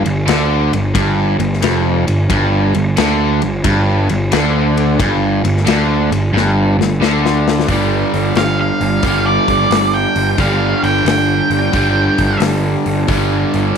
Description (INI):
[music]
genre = blues rock power trio and southern rock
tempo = 89 BPM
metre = 4/4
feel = swing 67% on 8ths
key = unclear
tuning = A4 = 440 Hz
[part]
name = crunchy overdriven guitar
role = riff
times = 0.0-13.8 s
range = F2 to G3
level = -16 LUFS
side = equal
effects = none
[part]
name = fuzz picked electric bass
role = bass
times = 0.0-13.7 s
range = F1 to D2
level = -16 LUFS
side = right 1 dB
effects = overdrive
[part]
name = big rock drum kit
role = drums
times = 0.1-13.8 s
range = hi-hat, kick drum, ride cymbal, snare drum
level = -20 LUFS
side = left 5 dB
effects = none
[part]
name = octave-fuzz lead guitar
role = melody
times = 8.4-12.4 s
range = D5 to G5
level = -17 LUFS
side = right 3 dB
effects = distortion, slapback echo
[sound]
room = light reverb, small room ambience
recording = 1960s-style stereo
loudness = -12 LUFS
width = side -7 dB against mid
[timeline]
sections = 0.0-7.7 A section; 7.7-13.8 B section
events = drum fill 6.3-7.7; lead electric guitar solo 7.7-13.8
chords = 0.0 G5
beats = 0.28 0.95 1.63 | 2.30 2.98 3.65 4.32 | 5.00 5.67 6.34 7.02 | 7.69 8.37 9.04 9.72 | 10.39 11.07 11.75 12.42 | 13.10 13.77